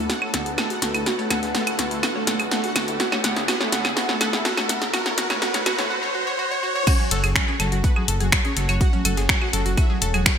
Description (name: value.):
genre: melodic techno.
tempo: 124 BPM.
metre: 4/4.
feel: straight.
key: F# minor.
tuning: A4 = 440 Hz.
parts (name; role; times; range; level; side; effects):
mellow synth brass; melody; 0.0-10.3 s; F#3 to F#4; -29 LUFS; equal; chorus, sidechain pumping, digital delay.
soft supersaw; second line; 0.0-10.3 s; F#4 to F#5; -33 LUFS; right 2 dB; sidechain pumping, digital delay.
deep dark ambient pad; sustained chords; 0.0-10.4 s; A3 to C#5; -36 LUFS; equal; chorus, built-in reverb, sidechain pumping.
analog pluck; arpeggios; 0.0-10.4 s; C#4 to F#6; -29 LUFS; equal; chorus, sidechain pumping, digital delay.
dark detuned saw bass; bass; 0.0-10.2 s; E1 to D2; -27 LUFS; equal; sidechain pumping.
riser; sound effects; 0.0-6.9 s; none; -29 LUFS; equal; none.
airy breathy pad; texture; 0.0-5.9 s; D4 to B5; -33 LUFS; right 1 dB; chorus, sidechain pumping.
dusty soul sampler-style drum kit; drums; 0.1-10.4 s; hi-hat, snare drum; -35 LUFS; right 2 dB; none.
punchy analog drum machine; drums; 0.1-10.4 s; claves, crash cymbal, finger snaps, hi-hat, snare drum; -23 LUFS; equal; overdrive, studio reverb, gated reverb.
electronic kick drum; drums; 6.9-10.4 s; none; -20 LUFS; equal; studio reverb.
room: moderate plate reverb, RT60 2.1 s.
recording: bright 1980s-style digital production, high-pass filter.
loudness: -19 LUFS.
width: side -8 dB against mid.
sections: 0.0-6.9 A section; 6.9-10.4 B section.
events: build-up 0.0-6.9; drum fill 0.0-5.9; riser 0.0-6.9; filter sweep on synth arpeggio sound 0.0-6.9; drop 6.9-10.4.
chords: 0.0 D6; 6.9 F#m.